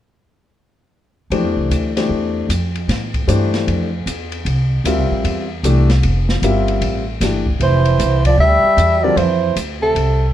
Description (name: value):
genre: modal jazz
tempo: 153 BPM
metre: 4/4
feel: swing 64% on 8ths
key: F major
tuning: A4 = 441 Hz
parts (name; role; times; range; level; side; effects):
- warm upright piano; accompaniment; 1.3-9.2 s; D3 to E5; -19 LUFS; left 3 dB; none
- upright bass; bass; 1.3-10.3 s; F1 to A2; -17 LUFS; equal; none
- open jazz drum kit; drums; 1.3-10.1 s; hi-hat, kick drum, ride cymbal, snare drum; -24 LUFS; left 1 dB; none
- mellow soprano saxophone; melody; 7.6-10.3 s; A4 to E5; -16 LUFS; equal; none
- warm trombone; second line; 7.6-10.3 s; C3 to G3; -21 LUFS; right 6 dB; none
room: light reverb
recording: none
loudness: -14 LUFS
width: side -12 dB against mid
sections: 1.3-7.6 A section; 7.6-10.3 B section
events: none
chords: 1.3 Fmaj9; 7.6 Fmaj7sus2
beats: | 1.32 1.71 2.10 2.50 | 2.89 3.28 3.68 4.07 | 4.46 4.86 5.25 5.64 | 6.03 6.43 6.82 7.21 | 7.61 8.00 8.39 8.78 | 9.18 9.57 9.96